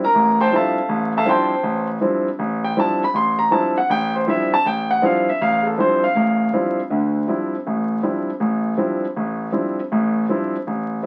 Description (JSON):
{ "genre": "jazz", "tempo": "160 BPM", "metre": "4/4", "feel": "swing 66% on 8ths", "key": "D minor", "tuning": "A4 = 440 Hz", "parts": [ { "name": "warm concert grand piano", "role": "solo", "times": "0.0-11.1 s", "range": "A1 to C6", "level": "-20 LUFS", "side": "equal", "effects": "none" } ], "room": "moderate studio reverb, RT60 0.6 s", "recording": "very old 78 rpm record, vinyl crackle", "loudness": "-20 LUFS", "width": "mono", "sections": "0.0-6.9 A section; 6.9-11.1 B section", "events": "none", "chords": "0.0 Dm11" }